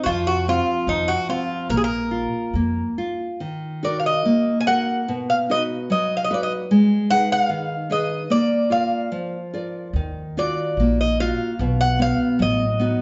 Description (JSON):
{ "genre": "fado-style ballad", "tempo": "73 BPM", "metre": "2/4", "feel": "rubato", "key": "Eb harmonic minor from 3.4 s", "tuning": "A4 = 440 Hz", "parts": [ { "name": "Irish bouzouki", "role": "melody", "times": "0.0-13.0 s", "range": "Eb4 to Ab5", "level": "-24 LUFS", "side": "equal", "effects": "none" }, { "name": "nylon-string guitar", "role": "accompaniment", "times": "0.0-13.0 s", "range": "B2 to D5", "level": "-25 LUFS", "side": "equal", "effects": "none" }, { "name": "upright bass", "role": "bass", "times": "0.1-2.8, 9.9-12.9 s", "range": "A1 to F2", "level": "-27 LUFS", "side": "equal", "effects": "none" } ], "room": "wet large studio reverb, RT60 1.2 s", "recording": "band playing live in one room, nothing above 7.7 kHz", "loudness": "-21 LUFS", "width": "mono", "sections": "0.0-3.4 A section; 3.4-13.0 B section", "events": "none", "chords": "0.1 F5; 1.7 Bb5; 3.4 Ebm; 5.1 B; 6.7 Abm; 8.3 Bb; 9.9 Ebmadd9; 11.6 B" }